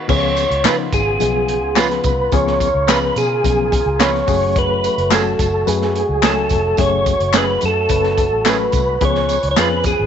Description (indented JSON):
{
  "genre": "uptempo 1960s-style soul",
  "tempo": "108 BPM",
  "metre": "4/4",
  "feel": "straight",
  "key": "Db mixolydian",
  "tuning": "A4 = 439 Hz",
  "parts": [
    { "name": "percussive tonewheel organ", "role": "sustained chords", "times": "0.0-10.1 s", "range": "Db3 to Cb5", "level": "-28 LUFS", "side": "equal", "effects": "overdrive, wide subtle chorus" },
    { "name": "percussive tonewheel organ", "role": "melody", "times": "0.1-10.1 s", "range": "Ab4 to Db5", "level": "-17 LUFS", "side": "right 1 dB", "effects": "overdrive, chorus vibrato, fast rotary speaker, tube saturation, slapback echo" },
    { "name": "reed electric piano", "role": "accompaniment", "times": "0.1-9.9 s", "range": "F3 to Ab5", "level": "-22 LUFS", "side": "left 13 dB", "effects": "overdrive, fast tremolo" },
    { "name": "vintage muted fingered electric bass", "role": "bass", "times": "0.1-10.1 s", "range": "F1 to Db3", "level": "-23 LUFS", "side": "equal", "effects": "none" },
    { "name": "crunchy breakbeat drum kit", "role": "drums", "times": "0.1-10.0 s", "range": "crash cymbal, hi-hat, kick drum, snare drum", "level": "-21 LUFS", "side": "right 3 dB", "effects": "none" },
    { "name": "tambourine and handclaps", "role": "percussion", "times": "0.1-10.0 s", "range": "none", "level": "-23 LUFS", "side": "left 7 dB", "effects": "none" },
    { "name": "electric guitar at the edge of break-up", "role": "stabs", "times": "0.6-9.7 s", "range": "A3 to Cb5", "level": "-24 LUFS", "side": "right 11 dB", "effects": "none" }
  ],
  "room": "light reverb",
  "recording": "1960s-style stereo with parts hard left and right, nothing above 7.9 kHz",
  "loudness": "-14 LUFS",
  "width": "side -8 dB against mid",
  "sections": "0.1-10.1 A section",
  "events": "none",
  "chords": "0.1 Db7; 4.3 Gbmadd9; 9.0 Db7"
}